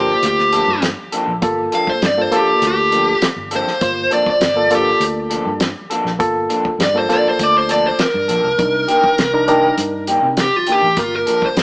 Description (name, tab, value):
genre	straight-eighth soul blues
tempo	100 BPM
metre	4/4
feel	straight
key	G minor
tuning	A4 = 444 Hz
part	dark smooth lead guitar	melody	0.0-11.6 s	F4 to F5	-16 LUFS	equal	overdrive, tape echo
part	barky reed electric piano	accompaniment	0.0-11.6 s	Bb3 to C5	-19 LUFS	equal	overdrive
part	electric guitar through a small old amp	stabs	0.0-11.5 s	Eb3 to A4	-20 LUFS	left 1 dB	none
part	vintage muted fingered electric bass	bass	0.0-11.6 s	G1 to C3	-28 LUFS	equal	none
part	warm soul drum kit	drums	0.2-11.6 s	hi-hat, kick drum, snare drum	-21 LUFS	equal	none
room	wet studio reverb, RT60 1.0 s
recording	band playing live in one room, small speaker sound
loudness	-13 LUFS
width	side -27 dB against mid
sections	0.0-11.6 A section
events	lead electric guitar solo 0.0-11.6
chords	0.0 Gm9; 8.6 Cm9; 11.0 Gm9